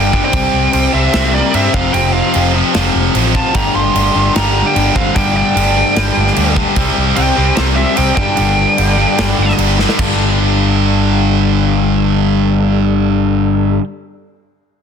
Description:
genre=hard rock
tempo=149 BPM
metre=4/4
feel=straight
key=unclear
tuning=A4 = 444 Hz
part: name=biting lead guitar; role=melody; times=0.0-9.5 s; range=C5 to C6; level=-17 LUFS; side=right 1 dB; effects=overdrive, analog delay
part: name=octave-fuzz lead guitar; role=second line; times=0.0-9.5 s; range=G3 to G4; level=-24 LUFS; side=right 4 dB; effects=distortion
part: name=tonewheel organ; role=sustained chords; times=0.0-13.8 s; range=F3 to D5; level=-28 LUFS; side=right 1 dB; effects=none
part: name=distorted electric guitar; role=riff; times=0.0-13.8 s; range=F2 to C4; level=-18 LUFS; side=right 14 dB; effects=overdrive
part: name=overdriven semi-hollow guitar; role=riff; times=0.0-13.8 s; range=F2 to C4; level=-16 LUFS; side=left 12 dB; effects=spring reverb
part: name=picked electric bass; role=bass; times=0.0-13.8 s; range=F1 to G2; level=-17 LUFS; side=right 1 dB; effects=none
part: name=big rock drum kit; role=drums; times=0.1-10.1 s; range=crash cymbal, kick drum, snare drum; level=-19 LUFS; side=right 1 dB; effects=none
room=small room ambience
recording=dense, heavily limited modern master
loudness=-11 LUFS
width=side -7 dB against mid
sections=0.0-10.0 A section; 10.0-13.2 B section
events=drum fill 9.8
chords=0.3 C; 1.7 F; 3.6 G5; 6.8 C5; 8.2 G5

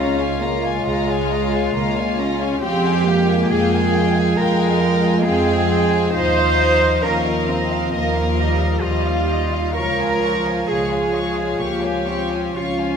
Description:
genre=cinematic, emotional film score for orchestra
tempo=67 BPM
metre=4/4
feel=rubato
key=Bb dorian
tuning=A4 = 440 Hz
part: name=warm studio violin section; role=melody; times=0.0-13.0 s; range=Eb5 to Db6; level=-31 LUFS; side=left 5 dB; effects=none
part: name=dark studio violin section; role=second line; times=0.0-13.0 s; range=Db5 to G5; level=-26 LUFS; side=left 1 dB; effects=none
part: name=rich studio viola section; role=accompaniment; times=0.0-13.0 s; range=F3 to Eb4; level=-25 LUFS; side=left 1 dB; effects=none
part: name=mellow French horn section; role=sustained chords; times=0.0-13.0 s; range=F3 to F4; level=-24 LUFS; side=left 3 dB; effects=none
part: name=dark studio double bass section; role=bass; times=0.0-13.0 s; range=Db2 to F2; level=-22 LUFS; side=right 3 dB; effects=none
part: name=warm studio cello section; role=bass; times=0.0-13.0 s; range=F4 to C5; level=-21 LUFS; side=right 2 dB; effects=none
room=wet scoring stage reverb, RT60 1.8 s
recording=minimal, uncompressed stereo recording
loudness=-16 LUFS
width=side -7 dB against mid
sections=0.0-13.0 A section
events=none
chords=0.0 Bbm7/Db; 2.6 Fmadd9; 6.1 Ebsus2; 9.8 Db

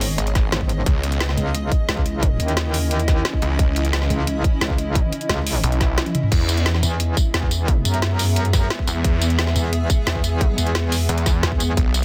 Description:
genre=dark technical drum and bass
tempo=176 BPM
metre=4/4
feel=straight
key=unclear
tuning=A4 = 442 Hz
part: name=deep dark ambient pad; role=sustained chords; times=0.0-12.0 s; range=B3 to E5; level=-32 LUFS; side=equal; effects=chorus, built-in reverb, sidechain pumping
part: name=metallic wobble bass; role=bass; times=0.0-11.8 s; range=G#1 to F#2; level=-23 LUFS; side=equal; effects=chorus
part: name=drum and bass drum kit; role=drums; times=0.0-12.0 s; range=crash cymbal, hi-hat, snare drum, tambourine, toms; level=-27 LUFS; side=equal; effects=none
part: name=granular cloud pad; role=texture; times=0.0-12.0 s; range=B3 to E5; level=-34 LUFS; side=equal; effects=built-in reverb, sidechain pumping
part: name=snarling distorted saw bass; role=bass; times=0.2-1.4, 3.4-6.8, 8.9-12.0 s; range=G#1 to E2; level=-23 LUFS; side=equal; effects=distortion, tube saturation, sidechain pumping
part: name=electronic kick drum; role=drums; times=0.4-11.8 s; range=none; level=-22 LUFS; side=equal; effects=none
part: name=swell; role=sound effects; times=5.8-6.3 s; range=none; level=-38 LUFS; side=equal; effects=none
room=light reverb, digital ambience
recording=dense, heavily limited modern master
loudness=-20 LUFS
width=mono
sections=0.0-12.0 A section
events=swell 5.8-6.3; drum fill 6.1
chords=0.0 G#m; 0.9 C#madd9; 6.3 E

